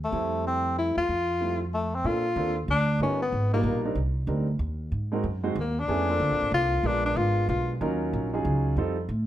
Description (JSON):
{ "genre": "jazz, small-group swing and bop", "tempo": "187 BPM", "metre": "3/4", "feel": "swing 62% on 8ths", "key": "Bb major", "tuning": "A4 = 440 Hz", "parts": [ { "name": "breathy tenor saxophone", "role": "melody", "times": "0.0-7.7 s", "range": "A3 to F4", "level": "-26 LUFS", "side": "left 2 dB", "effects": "none" }, { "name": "upright bass", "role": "bass", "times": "0.0-9.3 s", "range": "G1 to Bb2", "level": "-28 LUFS", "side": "right 1 dB", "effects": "none" }, { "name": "warm concert grand piano", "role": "accompaniment", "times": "0.1-9.0 s", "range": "B2 to C5", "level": "-30 LUFS", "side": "right 3 dB", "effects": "none" } ], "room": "light reverb", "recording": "none", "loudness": "-24 LUFS", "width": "side -12 dB against mid", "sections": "0.0-2.0 A section; 2.0-9.3 B section", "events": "none", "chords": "0.1 Fmaj7; 2.0 Bbmaj7; 3.0 G7alt; 4.0 Cm7; 4.9 Ab9; 5.9 Bbmaj7; 6.8 Bb7b9; 7.8 Ebm9; 8.8 F9" }